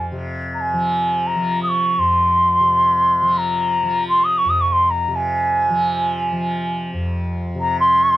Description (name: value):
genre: indian classical, Hindustani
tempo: free time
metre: none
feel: none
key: F raga bhairavi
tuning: A4 = 440 Hz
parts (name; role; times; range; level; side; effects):
- bansuri; melody; 0.0-8.2 s; Ab5 to Eb6+21c; -16 LUFS; equal; none
- tanpura; drone; 0.0-8.2 s; F2 to F3; -24 LUFS; equal; none
room: little or no reverb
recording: dry, close 1970s-style studio recording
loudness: -16 LUFS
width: side -16 dB against mid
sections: 0.0-8.2 A section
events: none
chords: none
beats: free time